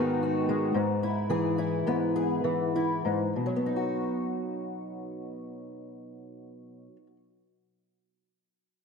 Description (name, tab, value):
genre	folk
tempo	94-115 BPM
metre	4/4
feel	straight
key	B major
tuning	A4 = 439 Hz
part	fingerpicked old ladder-braced acoustic guitar	accompaniment	0.0-7.3 s	G#2 to G#4	-27 LUFS	left 1 dB	analog chorus
room	wet plate reverb, RT60 2.1 s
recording	bright 1980s-style digital production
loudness	-26 LUFS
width	side -5 dB against mid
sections	0.0-3.4 A section; 3.4-8.5 B section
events	slowing down 0.0-3.4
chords	0.0 G#m; 0.7 E/G#; 3.4 B